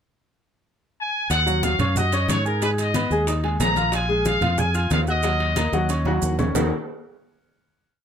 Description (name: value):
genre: latin, salsa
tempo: 183 BPM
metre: 4/4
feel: straight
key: Eb minor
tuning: A4 = 440 Hz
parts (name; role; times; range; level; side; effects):
- bright trumpet section; melody; 1.0-6.2 s; Bb4 to Bb5; -24 LUFS; left 1 dB; none
- fingered electric bass; bass; 1.3-6.7 s; Bb1 to Ab2; -24 LUFS; right 1 dB; none
- bongos; percussion; 1.3-6.6 s; none; -32 LUFS; left 4 dB; none
- congas; percussion; 1.3-6.6 s; none; -30 LUFS; equal; none
- maracas; percussion; 1.3-6.6 s; none; -35 LUFS; right 11 dB; none
- timbales; percussion; 1.3-6.6 s; none; -31 LUFS; right 6 dB; none
- clear grand piano; accompaniment; 1.5-6.7 s; Eb3 to Ab6; -25 LUFS; left 1 dB; none
room: light reverb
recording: close, detailed microphones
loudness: -19 LUFS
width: side -8 dB against mid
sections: 0.0-1.3 pickup bar; 1.3-6.5 A section; 6.5-7.9 final chord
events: drum fill 5.7-6.5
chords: 0.0 N.C.; 1.3 Ebm7; 2.6 Abm; 3.9 Bb5; 5.2 Ebm7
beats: | 0.00 0.33 0.65 0.98 | 1.31 1.63 1.96 2.29 | 2.62 2.94 3.27 3.60 | 3.93 4.25 4.58 4.91 | 5.24 5.57 5.89 6.22 | 6.55